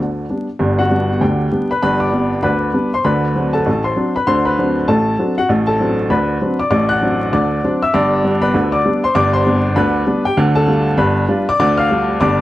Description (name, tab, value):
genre	ragtime piano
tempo	98 BPM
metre	2/4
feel	swing 60% on 16ths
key	G major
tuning	A4 = 440 Hz
part	warm upright piano	solo	0.0-12.4 s	G1 to F#6	-13 LUFS	equal	none
room	wet studio reverb, RT60 0.5 s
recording	dark, warm production, vinyl crackle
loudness	-13 LUFS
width	side -15 dB against mid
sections	0.6-12.4 A section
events	none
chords	0.0 G; 3.0 D7; 5.5 D7/A; 7.9 G; 10.4 G7